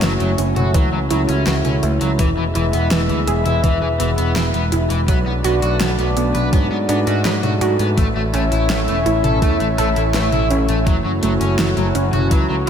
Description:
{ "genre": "synthwave", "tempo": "83 BPM", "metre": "4/4", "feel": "straight", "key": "F# minor", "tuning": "A4 = 440 Hz", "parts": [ { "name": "chorused pulse-width pad", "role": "sustained chords", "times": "0.0-12.7 s", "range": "G#3 to E5", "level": "-21 LUFS", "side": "left 1 dB", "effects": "sidechain pumping" }, { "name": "wide unison pluck", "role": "arpeggios", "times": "0.0-12.7 s", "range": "E3 to A4", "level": "-23 LUFS", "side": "right 4 dB", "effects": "digital delay, slapback echo" }, { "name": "crunchy overdriven guitar", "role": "riff", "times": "0.0-12.7 s", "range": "E3 to B4", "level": "-24 LUFS", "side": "left 2 dB", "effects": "wide subtle chorus, low-pass filter, digital delay, slapback echo" }, { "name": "picked electric bass", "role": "bass", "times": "0.0-12.7 s", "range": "E1 to G#2", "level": "-20 LUFS", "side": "equal", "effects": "tube saturation" }, { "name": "pop drum kit", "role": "drums", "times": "0.0-12.7 s", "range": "hi-hat, snare drum, toms", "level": "-24 LUFS", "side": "left 1 dB", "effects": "studio reverb" }, { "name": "electronic kick drum", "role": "drums", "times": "0.7-12.5 s", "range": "none", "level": "-16 LUFS", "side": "equal", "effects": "studio reverb" } ], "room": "moderate lush hall reverb, RT60 2.3 s", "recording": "big arena sound", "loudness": "-15 LUFS", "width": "side -8 dB against mid", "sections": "0.0-12.7 A section", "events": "none", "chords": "0.0 F#m7; 2.2 E; 5.1 Bm7; 8.0 A; 10.9 F#m7", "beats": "0.02 0.75 1.47 | 2.19 2.91 3.64 4.36 | 5.08 5.81 6.53 7.25 | 7.97 8.70 9.42 10.14 | 10.87 11.59 12.31" }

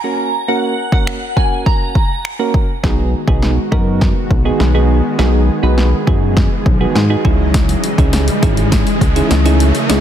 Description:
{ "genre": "dance-pop", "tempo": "102 BPM", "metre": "4/4", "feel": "straight", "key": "B major", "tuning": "A4 = 440 Hz", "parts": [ { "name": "shimmering bell with halo", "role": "melody", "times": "0.0-2.2 s", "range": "F#5 to A#5", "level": "-21 LUFS", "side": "right 1 dB", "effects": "ensemble chorus, phaser, dub echo" }, { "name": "soft electric-piano-like synth keys", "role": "accompaniment", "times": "0.0-10.0 s", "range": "A#3 to B4", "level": "-20 LUFS", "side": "right 4 dB", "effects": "chorus, sidechain pumping" }, { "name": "punchy analog drum machine", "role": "drums", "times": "0.9-10.0 s", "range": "finger snaps, hi-hat, kick drum, snare drum", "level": "-16 LUFS", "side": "equal", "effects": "overdrive, soft clipping on snare" }, { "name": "soft supersaw", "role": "sustained chords", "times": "2.8-10.0 s", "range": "C#3 to D#5", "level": "-21 LUFS", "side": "left 1 dB", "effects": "sidechain pumping" }, { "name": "chorused synth bass", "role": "bass", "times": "2.8-10.0 s", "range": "G#1 to G#2", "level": "-14 LUFS", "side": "equal", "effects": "sidechain pumping" }, { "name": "riser", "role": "sound effects", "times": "5.1-10.0 s", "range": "none", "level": "-22 LUFS", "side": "left 1 dB", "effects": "none" } ], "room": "digital ambience", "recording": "dense, heavily limited modern master", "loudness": "-12 LUFS", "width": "side -10 dB against mid", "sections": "0.0-2.8 A section; 2.8-10.0 B section", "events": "build-up 2.8-10.0; drum fill 2.8-10.0; riser 5.1-10.0", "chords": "0.0 F#; 2.8 B6; 7.2 C#madd9", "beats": "| 0.48 1.07 1.66 2.25 | 2.84 3.42 4.01 4.60 | 5.19 5.78 6.37 6.95 | 7.54 8.13 8.72 9.31 | 9.90" }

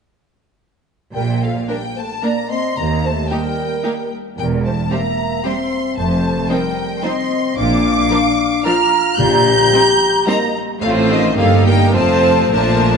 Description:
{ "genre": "quick classical-period movement for symphony orchestra", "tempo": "111 BPM", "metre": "3/4", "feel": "rubato", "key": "unclear", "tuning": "A4 = 441 Hz", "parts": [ { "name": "rich studio violin section", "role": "melody", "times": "1.1-13.0 s", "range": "Eb5 to G6", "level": "-21 LUFS", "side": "left 3 dB", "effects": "none" }, { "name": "large flute ensemble", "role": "second line", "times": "1.1-13.0 s", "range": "G4 to Bb5", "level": "-20 LUFS", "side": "right 3 dB", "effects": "none" }, { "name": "dark French horn section", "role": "sustained chords", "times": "1.1-13.0 s", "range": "Eb3 to G4", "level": "-20 LUFS", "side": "left 5 dB", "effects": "none" }, { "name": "rich studio cello section", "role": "bass", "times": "1.1-13.0 s", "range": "Eb2 to Bb2", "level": "-21 LUFS", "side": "right 2 dB", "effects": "none" }, { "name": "rich studio double bass section", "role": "bass", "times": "1.1-13.0 s", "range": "E1 to Eb2", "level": "-23 LUFS", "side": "right 4 dB", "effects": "none" }, { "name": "clear studio violin section", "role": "second line", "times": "1.7-13.0 s", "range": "D4 to C5", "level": "-25 LUFS", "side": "left 2 dB", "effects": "none" }, { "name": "rich studio viola section", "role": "accompaniment", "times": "1.7-13.0 s", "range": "F3 to Eb4", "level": "-23 LUFS", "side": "right 2 dB", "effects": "none" }, { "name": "timpani", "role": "percussion", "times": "9.2-10.0 s", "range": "Bb2", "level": "-26 LUFS", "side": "equal", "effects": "none" } ], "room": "moderate concert hall reverb, RT60 2.2 s", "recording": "nothing above 10.7 kHz", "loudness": "-14 LUFS", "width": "side -6 dB against mid", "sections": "1.1-13.0 A section", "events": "none", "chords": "1.1 N.C.; 2.8 Eb; 4.4 C7/E; 6.0 F7; 7.6 Bb; 9.2 Cm7/Bb (rootless); 10.8 F/A; 11.4 Eb/G; 11.9 F", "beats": "| 1.15 1.70 2.23 | 2.77 3.31 3.85 | 4.38 4.91 5.45 | 5.98 6.51 7.04 | 7.57 8.11 8.65 | 9.19 9.73 10.27 | 10.82 11.38 11.94 | 12.52" }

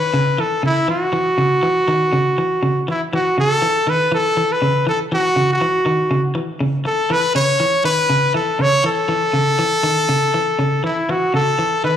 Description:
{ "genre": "afrobeat", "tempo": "121 BPM", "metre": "4/4", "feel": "swing 54% on 16ths", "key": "F# dorian", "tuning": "A4 = 440 Hz", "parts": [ { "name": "brilliant trumpet", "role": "melody", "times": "0.0-12.0 s", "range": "E4 to C#5", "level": "-16 LUFS", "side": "equal", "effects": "slapback echo" }, { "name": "clean electric guitar", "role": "arpeggios", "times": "0.0-12.0 s", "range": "C#3 to E3", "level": "-20 LUFS", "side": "equal", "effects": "analog delay" } ], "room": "light reverb, small room ambience", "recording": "live gig heard through the venue's PA, club reverb", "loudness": "-15 LUFS", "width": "side -9 dB against mid", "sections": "0.0-12.0 A section", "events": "none", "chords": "0.0 F#5", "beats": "0.15 0.64 | 1.14 1.64 2.13 2.63 | 3.13 3.62 4.12 4.62 | 5.12 5.61 6.11 6.61 | 7.11 7.60 8.10 8.60 | 9.10 9.59 10.09 10.59 | 11.09 11.58" }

